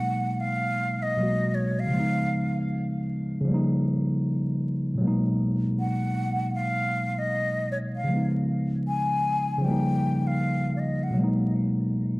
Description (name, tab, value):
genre	hip hop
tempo	78 BPM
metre	4/4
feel	swing 64% on 16ths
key	G# dorian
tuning	A4 = 439 Hz
part	breathy concert flute	melody	0.0-11.2 s	C#5 to G#5	-29 LUFS	left 1 dB	none
part	tine electric piano	accompaniment	0.0-12.2 s	A#2 to F#4	-24 LUFS	equal	overdrive
room	moderate spring reverb, RT60 1.6 s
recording	dark, warm production, vinyl crackle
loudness	-23 LUFS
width	side -22 dB against mid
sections	0.0-12.2 A section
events	none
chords	0.0 G#m7; 1.9 C#9; 3.5 D#9; 5.0 G#m7; 8.1 C#9; 9.6 D#9; 11.2 G#m7